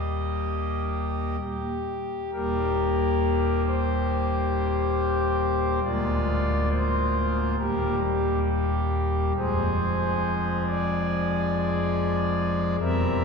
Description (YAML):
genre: classical, chorale-style piece for pipe organ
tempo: 69 BPM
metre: 4/4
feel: uneven beats, rubato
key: Eb major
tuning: A4 = 440 Hz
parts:
  - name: pipe organ, foundations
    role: solo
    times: 0.0-13.2 s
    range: D1 to E5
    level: -23 LUFS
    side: left 1 dB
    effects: none
room: wet church reverb, RT60 3.4 s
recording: heard from further back in the room, small room ambience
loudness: -23 LUFS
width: side -5 dB against mid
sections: 0.0-2.3 A section; 2.3-13.2 B section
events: none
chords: 0.0 Eb; 5.8 Bb7/D; 7.6 Eb; 9.4 Fm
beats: 0.47 1.40 | 2.33 3.22 4.10 4.97 | 5.83 6.71 7.59 8.46 | 9.36 10.24 11.09 11.94 | 12.80